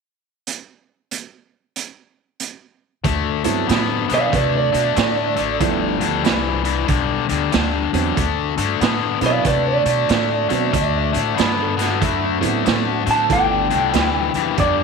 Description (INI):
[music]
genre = electric blues shuffle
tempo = 94 BPM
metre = 4/4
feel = swing 63% on 8ths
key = D mixolydian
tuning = A4 = 440 Hz
[part]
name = raw garage drum kit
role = drums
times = 0.5-14.8 s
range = hi-hat, kick drum, snare drum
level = -23 LUFS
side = right 6 dB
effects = none
[part]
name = overdriven electric guitar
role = riff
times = 3.0-14.8 s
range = G2 to B3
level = -20 LUFS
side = left 13 dB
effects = none
[part]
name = upright bass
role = bass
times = 3.0-14.8 s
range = G1 to C3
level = -25 LUFS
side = equal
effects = none
[part]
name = dark upright piano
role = accompaniment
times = 3.4-14.8 s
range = F3 to F#4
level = -26 LUFS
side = right 12 dB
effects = none
[part]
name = electric guitar through a small old amp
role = melody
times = 4.1-14.8 s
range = B4 to A5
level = -20 LUFS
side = right 3 dB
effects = none
[part]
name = electric guitar through a small old amp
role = second line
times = 10.8-13.0 s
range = D4 to E5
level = -27 LUFS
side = right 10 dB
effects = spring reverb
[sound]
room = moderate echo chamber reverb, RT60 1.6 s, small room ambience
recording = 1960s-style stereo with parts hard left and right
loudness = -16 LUFS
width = side -5 dB against mid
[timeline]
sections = 0.5-3.0 A section; 3.0-14.8 B section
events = none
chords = 0.5 N.C.; 3.0 D13; 5.6 G13; 8.2 D13; 13.3 G13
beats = | 0.47 1.12 1.76 2.40 | 3.05 3.69 4.33 4.97 | 5.61 6.25 6.89 7.54 | 8.18 8.81 9.46 10.10 | 10.74 11.38 12.02 12.66 | 13.30 13.94 14.59